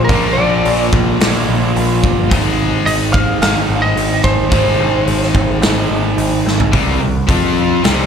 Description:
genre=hard rock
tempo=108 BPM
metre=4/4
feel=straight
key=unclear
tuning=A4 = 444 Hz
part: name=lightly driven lead guitar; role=melody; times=0.0-6.1 s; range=Bb4 to F5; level=-18 LUFS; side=right 1 dB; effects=plate reverb, slapback echo, digital delay
part: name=cranked stack guitar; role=riff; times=0.0-8.1 s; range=Ab2 to F4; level=-19 LUFS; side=left 12 dB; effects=overdrive, slapback echo
part: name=cranked stack guitar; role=riff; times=0.0-8.1 s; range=Ab2 to F4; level=-19 LUFS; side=right 11 dB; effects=overdrive
part: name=growling picked electric bass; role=bass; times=0.0-8.1 s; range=G1 to F2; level=-18 LUFS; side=equal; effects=overdrive
part: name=big rock drum kit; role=drums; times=0.1-8.0 s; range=hi-hat, kick drum, snare drum, toms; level=-17 LUFS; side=equal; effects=none
room=light reverb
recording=live gig heard through the venue's PA, club reverb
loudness=-12 LUFS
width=side -7 dB against mid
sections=0.0-6.7 A section; 6.7-8.1 B section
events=drum fill 6.5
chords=0.0 Bb; 2.3 Ab; 6.7 C5; 7.3 F5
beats=| 0.09 0.64 1.20 1.75 | 2.30 2.86 3.41 3.96 | 4.52 5.07 5.62 6.18 | 6.73 7.29 7.84

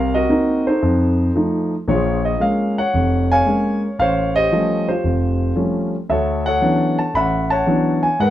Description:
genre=solo jazz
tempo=114 BPM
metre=4/4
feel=swing 68% on 8ths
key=unclear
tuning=A4 = 440 Hz
part: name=warm concert grand piano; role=solo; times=0.0-8.3 s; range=E#1 to B5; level=-16 LUFS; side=equal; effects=none
room=moderate studio reverb, RT60 0.6 s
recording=dark, warm production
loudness=-16 LUFS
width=side -13 dB against mid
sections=0.0-8.3 A section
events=none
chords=0.0 Cm7b5; 0.8 F7; 1.9 A#m7; 4.0 A7alt; 6.1 Dmaj13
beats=0.30 0.82 1.35 | 1.88 2.41 2.93 3.46 | 3.99 4.51 5.04 5.57 | 6.09 6.62 7.15 7.67 | 8.20

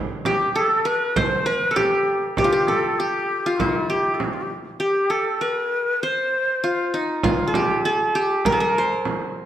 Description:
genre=Arabic maqam ensemble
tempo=99 BPM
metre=4/4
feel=straight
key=unclear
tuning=A4 = 441 Hz
part: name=qanun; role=melody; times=0.0-9.5 s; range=Eb4 to C5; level=-21 LUFS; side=equal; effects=none
part: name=breathy ney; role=second line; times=0.3-6.9 s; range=E4-49c to C5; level=-24 LUFS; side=left 1 dB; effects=none
part: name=frame drum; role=percussion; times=0.3-9.2 s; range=none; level=-26 LUFS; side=right 3 dB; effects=none
room=wet recital hall reverb, RT60 1.5 s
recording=none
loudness=-19 LUFS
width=side -11 dB against mid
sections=0.0-7.2 A section; 7.2-9.5 B section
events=none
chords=none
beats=0.56 1.17 1.78 | 2.38 2.99 3.60 4.21 | 4.81 5.42 6.03 6.63 | 7.24 7.85 8.45 9.06

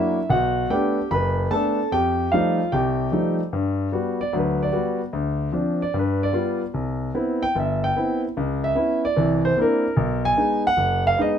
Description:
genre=solo jazz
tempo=149 BPM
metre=4/4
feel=swing 64% on 8ths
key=G major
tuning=A4 = 435 Hz
part: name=warm concert grand piano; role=solo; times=0.0-11.4 s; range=F#1 to B5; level=-20 LUFS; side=equal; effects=none
room=light reverb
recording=minimal, uncompressed stereo recording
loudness=-20 LUFS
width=side -8 dB against mid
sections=0.0-3.5 A section; 3.5-11.4 B section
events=grand piano solo 3.5-11.4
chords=0.3 Bm7; 1.9 F9; 3.5 Gmaj7; 5.1 Dm7; 5.9 G7; 6.7 Cmaj7; 8.4 C#m7; 9.2 C9; 10.0 B6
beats=| 0.30 0.70 1.10 1.51 | 1.91 2.31 2.71 3.12 | 3.52 3.92 4.33 4.73 | 5.13 5.53 5.94 6.34 | 6.74 7.14 7.55 7.95 | 8.35 8.76 9.16 9.56 | 9.96 10.37 10.77 11.17

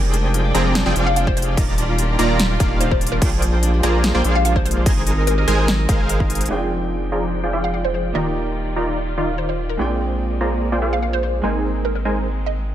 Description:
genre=future bass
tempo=146 BPM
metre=4/4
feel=half-time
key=F dorian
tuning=A4 = 439 Hz
part: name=clear symphonic string section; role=sustained chords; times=0.0-12.7 s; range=Eb3 to G5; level=-31 LUFS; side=left 2 dB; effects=sidechain pumping, low-pass filter
part: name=concert harp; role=arpeggios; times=0.0-8.9 s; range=D4 to Eb5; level=-28 LUFS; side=right 1 dB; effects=sidechain pumping, ping-pong delay
part: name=supersaw stab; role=riff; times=0.0-12.3 s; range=Eb3 to Bb5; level=-22 LUFS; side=right 1 dB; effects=cassette tape, sidechain pumping, low-pass filter
part: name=saturated sub bass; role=bass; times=0.0-12.7 s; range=Eb1 to Bb1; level=-21 LUFS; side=equal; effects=sidechain pumping
part: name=big-room dance drum kit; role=drums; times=0.1-6.6 s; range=crash cymbal, hi-hat, snare drum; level=-25 LUFS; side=equal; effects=overdrive, low-pass filter on hats, low-pass filter on cymbals, low-pass filter on snare
part: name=hollow square pluck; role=melody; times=1.1-12.7 s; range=Bb4 to F5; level=-26 LUFS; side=left 1 dB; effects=analog chorus, vintage 12-bit sampler grit, sidechain pumping, ping-pong delay
part: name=electronic kick drum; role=drums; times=1.3-6.3 s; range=none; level=-20 LUFS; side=equal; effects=overdrive
part: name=clear baby grand piano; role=accompaniment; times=6.5-12.7 s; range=Ab3 to G5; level=-28 LUFS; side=right 4 dB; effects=sidechain pumping, ping-pong delay
room=light reverb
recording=none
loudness=-17 LUFS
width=side -11 dB against mid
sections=0.0-6.5 A section; 6.5-12.7 B section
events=drop 0.0-6.5; drum fill 6.3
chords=0.0 Fm69; 1.6 Ebmaj9; 3.2 Bb13; 4.9 Abmaj9; 6.5 Fm69; 8.1 Ebmaj9; 9.8 Bb13; 11.4 Abadd9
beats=0.34 0.75 1.16 | 1.57 1.99 2.40 2.81 | 3.22 3.63 4.04 4.45 | 4.86 5.27 5.68 6.09 | 6.50 6.92 7.33 7.74 | 8.15 8.56 8.97 9.38 | 9.79 10.20 10.62 11.03 | 11.44 11.85 12.26 12.67

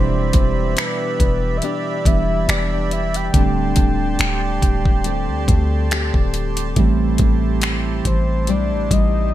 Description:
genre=contemporary R&B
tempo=70 BPM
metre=4/4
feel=swing 54% on 16ths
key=unclear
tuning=A4 = 440 Hz
part: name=soft octave-layered synth lead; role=melody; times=0.0-9.3 s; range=B4 to G5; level=-25 LUFS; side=left 1 dB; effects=chorus, digital delay
part: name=mellow tine electric piano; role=accompaniment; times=0.0-9.3 s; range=B2 to G4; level=-24 LUFS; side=right 6 dB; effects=analog chorus
part: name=accordion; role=sustained chords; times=0.0-9.3 s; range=E4 to C6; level=-29 LUFS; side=right 5 dB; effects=light tremolo tuning, sidechain pumping
part: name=nylon-string guitar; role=arpeggios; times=0.0-9.3 s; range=A2 to G4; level=-27 LUFS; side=left 9 dB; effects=digital delay
part: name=warm 808-style bass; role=bass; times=0.0-9.3 s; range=D1 to D2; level=-21 LUFS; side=equal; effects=none
part: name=smooth R&B drum kit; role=drums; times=0.3-9.1 s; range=finger snaps, hi-hat, kick drum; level=-18 LUFS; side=equal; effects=gated reverb
room=digital ambience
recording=bright 1980s-style digital production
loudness=-16 LUFS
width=side -13 dB against mid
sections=0.0-9.3 A section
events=none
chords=0.0 Em7; 3.3 D7sus4; 6.8 Am7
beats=0.77 1.62 2.48 | 3.34 4.20 5.05 5.91 | 6.77 7.62 8.48 9.34

